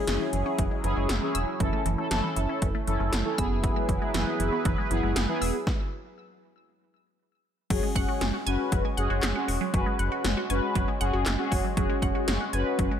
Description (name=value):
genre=synth-pop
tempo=118 BPM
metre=4/4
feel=straight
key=F# minor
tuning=A4 = 439 Hz
part: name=mellow synth brass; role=accompaniment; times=0.0-12.9 s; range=B3 to B4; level=-30 LUFS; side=left 1 dB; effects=chorus, phaser
part: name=sweeping resonant pad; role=sustained chords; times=0.0-13.0 s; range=F#3 to B4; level=-34 LUFS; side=equal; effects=chorus
part: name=resonant blip pluck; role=arpeggios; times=0.0-13.0 s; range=E3 to E6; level=-34 LUFS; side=right 1 dB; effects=phaser, tape echo
part: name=round analog bass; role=bass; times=0.1-12.9 s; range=E1 to F#1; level=-29 LUFS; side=equal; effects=none
part: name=80s electronic pad drums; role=drums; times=0.1-12.9 s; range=crash cymbal, handclaps, hi-hat, kick drum, snare drum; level=-29 LUFS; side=equal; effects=overdrive
room=light reverb, digital ambience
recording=none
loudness=-24 LUFS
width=side -9 dB against mid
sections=0.0-7.7 A section; 7.7-13.0 B section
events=stop 5.7-7.7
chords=0.0 C#m/F#; 1.6 A/F#; 3.4 E; 7.7 F#sus2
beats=0.08 0.58 1.09 | 1.60 2.11 2.62 3.13 | 3.63 4.14 4.65 5.16 | 5.67 6.18 6.69 7.20 | 7.70 8.21 8.72 9.23 | 9.74 10.25 10.75 11.26 | 11.77 12.28 12.79